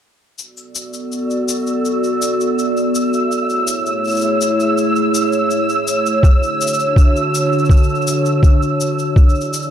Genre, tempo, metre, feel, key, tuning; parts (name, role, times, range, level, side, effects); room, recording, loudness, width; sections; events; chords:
folktronica; 82 BPM; 4/4; straight; B dorian; A4 = 440 Hz
warbly tape-like pad; sustained chords; 0.8-9.7 s; D3 to D5; -17 LUFS; equal; chorus, built-in reverb
cabasa; drums; 0.4-9.7 s; -26 LUFS; left 5 dB; overdrive
flickering grainy texture; texture; 1.4-9.7 s; E6; -21 LUFS; right 3 dB; built-in reverb
electronic kick drum; drums; 6.2-9.3 s; -10 LUFS; equal
moderate studio reverb, RT60 0.5 s; dark, warm production; -13 LUFS; side -9 dB against mid
0.4-9.7 A section
0.4 Bm7; 3.3 Amaj7; 6.2 Dmaj7; 9.2 E7